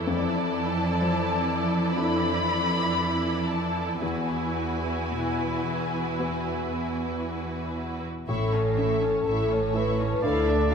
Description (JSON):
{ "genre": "cinematic", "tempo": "55-64 BPM", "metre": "4/4", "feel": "rubato", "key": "A major", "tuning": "A4 = 441 Hz", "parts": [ { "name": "muted studio violin section", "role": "second line", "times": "0.0-10.7 s", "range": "F#4 to F5", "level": "-34 LUFS", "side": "equal", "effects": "none" }, { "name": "clear grand piano", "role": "accompaniment", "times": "0.0-10.7 s", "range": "D2 to B4", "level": "-31 LUFS", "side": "left 3 dB", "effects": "none" }, { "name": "muted studio viola section", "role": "accompaniment", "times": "0.0-10.7 s", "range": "E3 to E4", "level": "-32 LUFS", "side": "right 2 dB", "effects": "none" }, { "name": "muted studio cello section", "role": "bass", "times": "0.0-10.7 s", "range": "D2 to A2", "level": "-30 LUFS", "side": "right 4 dB", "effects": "none" }, { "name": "muted studio violin section", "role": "melody", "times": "0.1-10.7 s", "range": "E5 to C#6", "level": "-32 LUFS", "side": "left 3 dB", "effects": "none" }, { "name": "dark French horn section", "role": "sustained chords", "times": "8.3-10.7 s", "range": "A4 to B4", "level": "-25 LUFS", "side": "left 4 dB", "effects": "none" }, { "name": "muted studio double bass section", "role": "bass", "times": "8.3-10.7 s", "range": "A1 to D2", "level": "-31 LUFS", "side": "right 4 dB", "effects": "none" }, { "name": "clear oboe", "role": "second line", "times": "10.2-10.7 s", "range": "D5", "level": "-31 LUFS", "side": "right 1 dB", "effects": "none" } ], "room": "moderate scoring stage reverb, RT60 1.7 s", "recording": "none", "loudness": "-24 LUFS", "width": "side -6 dB against mid", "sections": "0.0-8.3 A section; 8.3-10.7 A section", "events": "none", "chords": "0.1 Dmadd9/F; 4.0 Eadd9; 8.3 A; 10.2 Dmadd9", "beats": "| 0.07 1.02 1.97 2.96 | 4.02 5.12 6.19 7.25 | 8.29 9.26 10.23" }